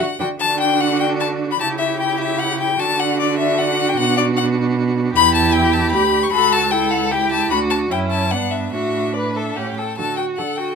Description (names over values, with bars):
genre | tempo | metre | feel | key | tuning
quick classical-period movement for string quartet | 151 BPM | 3/4 | straight | D major | A4 = 440 Hz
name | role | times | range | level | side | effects
clear violin | melody | 0.0-10.8 s | D5 to C#6 | -19 LUFS | left 8 dB | none
rich violin | second line | 0.0-10.8 s | D4 to B4 | -24 LUFS | equal | none
warm viola | accompaniment | 0.0-10.8 s | B3 to A4 | -24 LUFS | right 6 dB | none
rich cello | bass | 0.0-10.7 s | C#2 to D3 | -23 LUFS | right 5 dB | none
room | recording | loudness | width
moderate large studio reverb, RT60 0.8 s | minimal, uncompressed stereo recording | -16 LUFS | side -6 dB against mid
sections
0.4-10.0 A section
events
none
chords
0.4 D; 1.6 C#dim; 2.8 D; 4.0 Bm; 5.2 Em; 6.3 A7/C#; 7.5 D; 8.3 G; 8.7 D/A; 9.6 A; 10.0 D